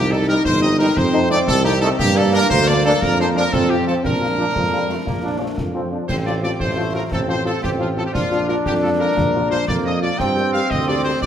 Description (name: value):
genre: military-style march for wind band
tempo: 117 BPM (dotted quarters)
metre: 6/8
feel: straight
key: Bb major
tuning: A4 = 440 Hz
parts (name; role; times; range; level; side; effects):
- bright trumpet section; melody; 0.0-11.3 s; F4 to G5; -22 LUFS; equal; none
- warm euphonium; second line; 0.0-5.8 s; Bb3 to Eb4; -21 LUFS; right 1 dB; none
- mellow tuba; bass; 0.0-11.3 s; G1 to G2; -21 LUFS; right 2 dB; none
- warm French horn section; accompaniment; 0.1-11.1 s; F3 to G4; -26 LUFS; left 4 dB; none
- bright trombone section; sustained chords; 0.3-11.3 s; F3 to Eb4; -24 LUFS; equal; none
- concert snare drum, concert bass drum and clash cymbals; drums; 0.5-11.3 s; none; -27 LUFS; left 1 dB; none
room: wet recital hall reverb, RT60 1.5 s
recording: none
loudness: -16 LUFS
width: side -9 dB against mid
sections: 0.0-6.1 A section; 6.1-11.3 B section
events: none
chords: 0.0 Cm; 1.0 F7; 2.0 Gm; 3.0 Bb/F; 3.5 F5; 4.0 Bb; 6.1 F/A; 8.1 Bb; 10.2 Gm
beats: 0.46 | 0.97 1.48 | 1.99 2.50 | 3.02 3.53 | 4.04 4.56 | 5.07 5.58 | 6.09 6.61 | 7.12 7.63 | 8.14 8.66 | 9.17 9.68 | 10.20 10.71 | 11.22